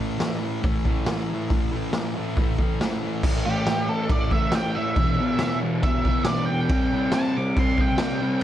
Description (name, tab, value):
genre	garage rock duo or trio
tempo	139 BPM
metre	4/4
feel	straight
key	A minor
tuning	A4 = 442 Hz
part	thick fuzz guitar	riff	0.0-8.4 s	E2 to C4	-24 LUFS	equal	distortion
part	raw garage drum kit	drums	0.2-8.4 s	crash cymbal, hi-hat, kick drum, snare drum	-24 LUFS	equal	none
part	octave-fuzz lead guitar	melody	3.5-8.4 s	G4 to D6	-28 LUFS	right 2 dB	distortion
room	light reverb, small room ambience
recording	cassette tape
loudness	-21 LUFS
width	side -12 dB against mid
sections	0.0-3.2 A section; 3.2-8.4 B section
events	none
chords	0.0 A5; 5.0 E5; 6.7 C5